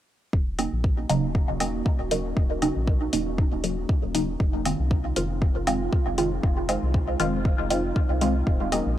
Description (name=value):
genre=dub techno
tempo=118 BPM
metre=4/4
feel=swing 54% on 16ths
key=Eb dorian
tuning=A4 = 440 Hz
part: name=dark analog pad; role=sustained chords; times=1.1-9.0 s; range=Ab3 to Gb4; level=-35 LUFS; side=right 1 dB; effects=chorus, phaser, sidechain pumping
part: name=round analog bass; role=bass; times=0.3-9.0 s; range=Eb1 to C2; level=-29 LUFS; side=equal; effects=sidechain pumping
part: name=electronic kick drum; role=drums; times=0.3-8.6 s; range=none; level=-23 LUFS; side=equal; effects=none
part: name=filtered dub chord stab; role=stabs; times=0.6-9.0 s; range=Db3 to F4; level=-26 LUFS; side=right 1 dB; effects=phaser, sidechain pumping, dub echo
part: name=electronic hi-hat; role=drums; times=0.6-8.8 s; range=none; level=-32 LUFS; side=left 3 dB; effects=none
part: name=woodblock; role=percussion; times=0.6-8.8 s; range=none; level=-35 LUFS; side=equal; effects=sidechain pumping on perc, dub echo
room=light reverb, digital ambience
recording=none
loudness=-22 LUFS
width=side -12 dB against mid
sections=0.3-9.0 A section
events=none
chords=0.3 Ebm7; 4.4 Fm7; 8.5 Ebm7